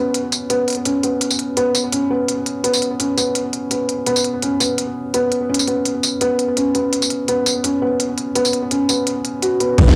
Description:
half-time drum and bass; 168 BPM; 4/4; swing 53% on 16ths, half-time; A4 = 440 Hz
felt-muted upright piano; arpeggios; 0.0-9.9 s; B3 to F#4; -20 LUFS; equal; low-pass filter, cassette tape, analog delay
industrial drum kit; drums; 0.1-9.9 s; crash cymbal, hi-hat, snare drum, tambourine; -23 LUFS; equal
long sustained 808-style bass; bass; 9.8-9.9 s; B1; -13 LUFS; equal; tube saturation
electronic kick drum; drums; 9.8-9.9 s; -18 LUFS; equal
impact; sound effects; 9.8-10.0 s; -18 LUFS; equal
light reverb; home recording on cassette; -19 LUFS; mono
0.0-9.8 A section
impact 9.8
0.0 B5
0.14 0.50 0.85 | 1.21 1.57 1.93 2.28 | 2.64 3.00 3.35 3.71 | 4.07 4.43 4.78 5.14 | 5.50 5.86 6.21 6.57 | 6.93 7.28 7.64 8.00 | 8.36 8.71 9.07 9.43 | 9.78

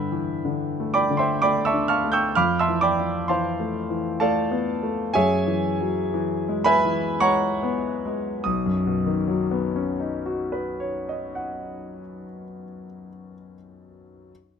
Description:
classical, impressionist solo piano; 46-67 BPM; 3/4; rubato; A4 = 439 Hz
clear grand piano; solo; 0.0-14.3 s; B1 to G6; -22 LUFS; equal
light reverb; close, detailed microphones; -21 LUFS; side -7 dB against mid
0.0-8.4 A section; 8.4-12.1 B section
slowing down 0.9-8.4
0.0 Gadd9; 2.4 Fmaj7#11; 5.1 F#9sus4; 8.4 Badd9
0.45 1.42 | 2.36 3.30 4.20 | 5.13 6.10 7.18 | 8.43 9.63 10.85

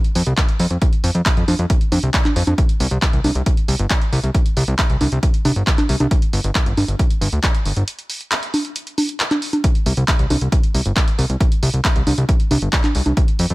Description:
uplifting trance; 136 BPM; 4/4; straight; A4 = 442 Hz
punchy analog drum machine; drums; 0.0-13.5 s; congas, handclaps, hi-hat; -21 LUFS; right 1 dB; sidechain pumping on hats, sidechain pumping on perc
fat analog bass; bass; 0.2-13.5 s; G1 to F2; -18 LUFS; equal; sidechain pumping
electronic kick drum; drums; 0.4-13.3 s; -17 LUFS; equal
little or no reverb; -15 LUFS; side -20 dB against mid
0.0-13.5 A section
break 7.9-9.6
0.38 | 0.82 1.26 1.70 2.14 | 2.58 3.02 3.46 3.90 | 4.35 4.79 5.23 5.67 | 6.11 6.55 6.99 7.43 | 7.88 8.32 8.76 9.20 | 9.64 10.08 10.52 10.96 | 11.40 11.85 12.29 12.73 | 13.17

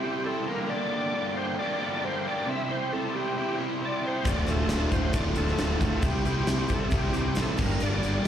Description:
classic rock; 135 BPM; 4/4; straight; A4 = 441 Hz
overdriven tonewheel organ; melody; 0.0-8.3 s; G4 to E5; -32 LUFS; equal; slow rotary speaker, chorus vibrato, slapback echo
cranked stack guitar; riff; 0.0-8.3 s; D2 to C5; -30 LUFS; equal; overdrive, slapback echo
string machine, full ensemble; sustained chords; 4.2-8.3 s; G3 to D5; -41 LUFS; equal
overdriven electric guitar; riff; 4.2-8.3 s; D2 to C4; -32 LUFS; equal
huge arena drum kit; drums; 4.2-8.3 s; crash cymbal, kick drum, snare drum; -29 LUFS; equal
fuzz fingered electric bass; bass; 4.3-8.2 s; D1 to C2; -30 LUFS; equal; overdrive
tube shaker; percussion; 4.3-8.1 s; -48 LUFS; left 3 dB
light reverb, small room ambience; live gig heard through the venue's PA, recital hall reverb; -25 LUFS; side -9 dB against mid
0.0-8.3 A section
0.5 Gm; 2.5 C; 4.3 Dm; 6.0 C; 7.6 Gm
0.25 | 0.70 1.14 1.59 2.03 | 2.48 2.92 3.36 3.81 | 4.25 4.70 5.14 5.59 | 6.03 6.47 6.92 7.36 | 7.81 8.25

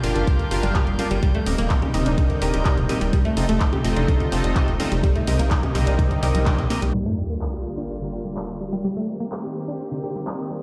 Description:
progressive house; 126 BPM; 4/4; straight; G minor; A4 = 440 Hz
supersaw pad; sustained chords; 0.0-10.6 s; C3 to G4; -32 LUFS; equal; sidechain pumping, low-pass filter
chorused polysynth; stabs; 0.0-6.8 s; C4 to F5; -29 LUFS; equal; sidechain pumping, tape echo
tight sequencer bass; bass; 0.0-6.9 s; Eb1 to C2; -26 LUFS; equal; tube saturation, sidechain pumping
house drum kit; drums; 0.0-10.5 s; handclaps, hi-hat, shaker; -34 LUFS; equal; sidechain pumping on hats, sidechain pumping on perc
drifting glass-harmonics texture; texture; 0.0-6.9 s; G6; -43 LUFS; equal; chorus, built-in reverb, sidechain pumping
analog pluck; arpeggios; 0.2-10.6 s; D3 to G4; -30 LUFS; equal; chorus, phaser, sidechain pumping, tape echo
electronic kick drum; drums; 0.3-6.6 s; -23 LUFS; equal
electronic congas and toms; percussion; 1.0-6.7 s; -33 LUFS; equal; overdrive, sidechain pumping on perc, sidechain pumping on toms
sub drop; sound effects; 6.9-8.8 s; -32 LUFS; equal
moderate recital hall reverb, RT60 1.3 s, digital ambience; played on a big sound system in a bare room, large studio reverb, low-pass filter; -22 LUFS; mono
0.0-6.9 A section; 6.9-10.6 B section
filter sweep on synth arpeggio sound 0.0-6.9, 6.9-10.6; band accent 6.5; impact 6.9-8.8; filter sweep on supersaw synth 6.9-10.6
0.0 Gm7; 1.2 Eb6; 3.1 F7; 5.0 Cm7; 6.9 Gm7; 8.8 Eb6
0.27 0.75 | 1.23 1.70 2.18 2.65 | 3.13 3.61 4.08 4.56 | 5.04 5.51 5.99 6.46 | 6.94 7.42 7.89 8.37 | 8.85 9.32 9.80 10.27

